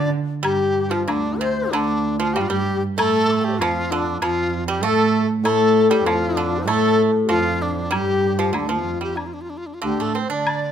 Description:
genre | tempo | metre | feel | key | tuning
chinese traditional, Chinese chamber ensemble | 96 BPM | 4/4 | rubato | D yu mode | A4 = 439 Hz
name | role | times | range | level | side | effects
bright reedy large dizi | melody | 0.0-10.7 s | D4 to D5 | -24 LUFS | equal | none
bright reedy xiao | second line | 0.0-10.1 s | D4 to D6 | -26 LUFS | left 9 dB | none
dark cello | second line | 0.0-10.7 s | D2 to D3 | -23 LUFS | right 5 dB | none
pipa | second line | 0.0-10.7 s | C3 to D4 | -25 LUFS | right 4 dB | none
woodblock | percussion | 0.4-10.6 s | none | -27 LUFS | left 3 dB | none
hammered dulcimer | accompaniment | 5.4-8.5 s | A2 | -21 LUFS | left 7 dB | none
room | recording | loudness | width
light reverb | close, detailed microphones | -18 LUFS | side -9 dB against mid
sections
0.4-10.5 A section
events
none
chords
none

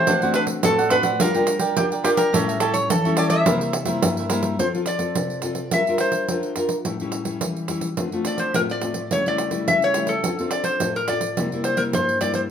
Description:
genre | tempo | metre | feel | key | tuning
samba and choro | 106 BPM | 4/4 | straight | F major from 4.6 s | A4 = 444 Hz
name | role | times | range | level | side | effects
metal-body resonator slide guitar | melody | 0.0-12.4 s | G4 to E5 | -22 LUFS | left 1 dB | none
cavaquinho | accompaniment | 0.0-4.6 s | D4 to G5 | -26 LUFS | right 5 dB | none
nylon-string guitar | accompaniment | 0.0-12.5 s | G2 to Bb4 | -24 LUFS | left 2 dB | none
pandeiro | percussion | 0.1-12.5 s | none | -25 LUFS | right 3 dB | none
room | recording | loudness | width
moderate large studio reverb, RT60 0.9 s | minimal, uncompressed stereo recording | -19 LUFS | side -8 dB against mid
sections
0.0-4.6 A section; 4.6-12.5 B section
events
none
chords
0.1 D7; 1.2 Gm7; 2.3 A7; 3.5 C7; 4.6 F; 5.7 Gm7; 6.9 A7; 8.0 Dm7; 9.1 A7/C#; 10.2 Dm7; 11.4 C7

